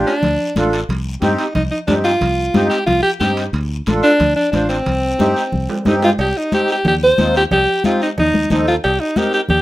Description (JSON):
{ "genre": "latin, cumbia", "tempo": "181 BPM", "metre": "4/4", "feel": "straight", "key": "C dorian", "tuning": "A4 = 440 Hz", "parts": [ { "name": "accordion", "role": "accompaniment", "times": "0.0-9.4 s", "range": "C4 to C5", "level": "-20 LUFS", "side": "equal", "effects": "light tremolo tuning" }, { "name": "fingered electric bass", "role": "bass", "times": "0.0-9.6 s", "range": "A1 to G2", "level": "-21 LUFS", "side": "equal", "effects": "none" }, { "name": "breathy alto saxophone", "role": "melody", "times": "0.1-9.6 s", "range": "C4 to C5", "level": "-16 LUFS", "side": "equal", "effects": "none" }, { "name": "guiro", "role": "percussion", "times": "0.1-9.6 s", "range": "none", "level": "-34 LUFS", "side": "left 5 dB", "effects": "none" }, { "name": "timbales and cowbell", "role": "percussion", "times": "0.1-9.6 s", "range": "none", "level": "-27 LUFS", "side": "right 3 dB", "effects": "none" }, { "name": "congas", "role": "percussion", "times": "0.2-9.6 s", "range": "none", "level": "-21 LUFS", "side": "left 1 dB", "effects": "none" } ], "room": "moderate studio reverb, RT60 0.5 s", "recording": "rough home demo mix", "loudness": "-14 LUFS", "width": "side -16 dB against mid", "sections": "0.0-6.2 A section; 6.2-9.6 B section", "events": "drum fill 5.2-6.2", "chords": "0.0 Dm; 0.9 Cm; 3.5 Dm; 4.9 Cm" }